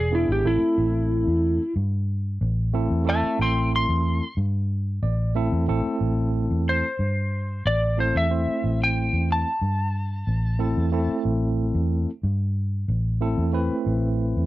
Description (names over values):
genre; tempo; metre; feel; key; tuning
straight-eighth soul blues; 92 BPM; 4/4; straight; A minor; A4 = 444 Hz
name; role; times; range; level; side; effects
electric slide guitar; melody; 0.0-11.2 s; E4 to C6; -25 LUFS; equal; none
vintage muted fingered electric bass; bass; 0.0-14.5 s; E1 to G2; -23 LUFS; equal; none
tine electric piano; accompaniment; 0.1-14.5 s; A3 to E5; -26 LUFS; right 2 dB; medium stereo tremolo
room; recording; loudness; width
little or no reverb; dry, close 1970s-style studio recording; -21 LUFS; side -16 dB against mid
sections
0.0-5.7 A section; 5.7-14.5 B section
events
electric slide guitar solo 0.0-5.7; tine electric piano fill 4.7-5.7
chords
0.5 Am